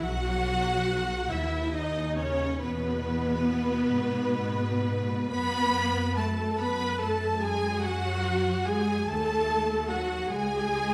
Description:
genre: classical, slow romantic movement for string orchestra.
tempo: 41-50 BPM (dotted quarters).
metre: 12/8.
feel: rubato.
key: unclear.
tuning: A4 = 437 Hz.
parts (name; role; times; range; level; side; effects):
warm studio violin section; melody; 0.0-10.9 s; B4 to B5; -36 LUFS; equal; none.
warm studio violin section; second line; 0.0-10.9 s; B4 to B5; -36 LUFS; equal; none.
warm symphonic viola section; accompaniment; 0.0-10.9 s; B3 to B4; -33 LUFS; equal; none.
rich symphonic double bass section; bass; 0.0-10.9 s; B1 to G#2; -35 LUFS; equal; none.
warm symphonic cello section; bass; 0.0-10.9 s; B2 to B3; -36 LUFS; equal; none.
room: wet scoring stage reverb, RT60 1.7 s.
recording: none.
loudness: -28 LUFS.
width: mono.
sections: 0.0-10.9 A section.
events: none.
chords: 0.0 B; 2.6 E; 5.3 F#m; 10.3 C#5.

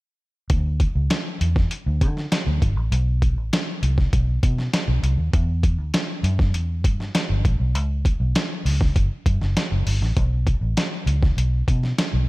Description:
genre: polished 1980s jazz-funk pop.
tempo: 99 BPM.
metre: 4/4.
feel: straight.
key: D major.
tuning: A4 = 445 Hz.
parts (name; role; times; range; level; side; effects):
vintage muted fingered electric bass; bass; 0.5-12.3 s; F#1 to D3; -21 LUFS; equal; none.
lo-fi sampler-style drum kit; drums; 0.5-12.1 s; hi-hat, kick drum, snare drum; -22 LUFS; equal; overdrive, gated reverb.
room: little or no reverb.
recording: none.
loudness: -19 LUFS.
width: side -21 dB against mid.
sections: 0.5-12.3 A section.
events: none.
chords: none.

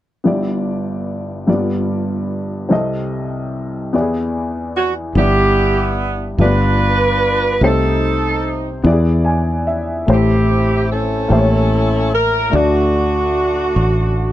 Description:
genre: gospel.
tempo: 49 BPM (dotted quarters).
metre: 6/8.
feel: straight.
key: G major.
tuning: A4 = 440 Hz.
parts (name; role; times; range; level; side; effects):
warm upright piano; accompaniment; 0.2-14.3 s; G1 to G#5; -18 LUFS; left 2 dB; none.
mellow saxophone section; melody; 4.8-14.3 s; A3 to B4; -16 LUFS; right 1 dB; none.
fingered electric bass; bass; 5.2-14.3 s; G1 to E2; -18 LUFS; equal; none.
room: little or no reverb.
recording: dry, close 1970s-style studio recording.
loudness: -14 LUFS.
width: side -13 dB against mid.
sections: 0.2-5.2 A section; 5.2-14.3 B section.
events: upright piano fill 8.9-10.1.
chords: 0.2 G6; 1.5 G7; 2.7 Cm6; 3.9 E7; 5.2 G6; 6.4 G7; 7.6 Cm6; 8.9 E7; 10.1 Am7; 11.3 A7b9; 12.5 D.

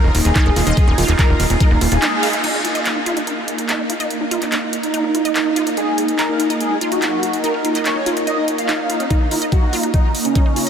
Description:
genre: psychedelic trance.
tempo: 144 BPM.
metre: 4/4.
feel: straight.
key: unclear.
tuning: A4 = 440 Hz.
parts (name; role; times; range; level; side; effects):
wide unison lead; melody; 0.0-2.4, 5.8-10.7 s; Db4 to F5; -23 LUFS; equal; phaser, sidechain pumping, diffuse ambient delay.
overtone-sweeping drone; sustained chords; 0.0-10.7 s; Eb4 to Bb4; -24 LUFS; right 1 dB; chorus, built-in reverb, sidechain pumping.
plucky analog bass; bass; 0.0-2.0 s; Eb1; -17 LUFS; equal; none.
ethereal airy pad; texture; 0.0-10.7 s; Bb3 to Bb5; -25 LUFS; right 1 dB; ensemble chorus, built-in reverb, sidechain pumping.
drum and bass drum kit; drums; 0.1-10.7 s; crash cymbal, handclaps, hi-hat, ride cymbal; -22 LUFS; equal; overdrive.
wide unison pluck; riff; 0.4-10.7 s; Db4 to F5; -24 LUFS; right 1 dB; auto-pan, sidechain pumping, diffuse ambient delay.
electronic kick drum; drums; 0.4-1.7, 9.1-10.4 s; none; -15 LUFS; equal; overdrive.
room: wet huge ambient reverb, RT60 7.4 s.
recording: dreamy mix soaked in reverb.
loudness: -15 LUFS.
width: side -8 dB against mid.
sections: 0.0-2.4 A section; 2.4-9.1 B section; 9.1-10.7 C section.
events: drop 0.0-2.4; break 2.0-2.4; band accent 2.0; filter sweep on synth drone 2.4-9.1, 9.1-10.7; build-up 9.1-10.7.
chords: 0.0 Eb5.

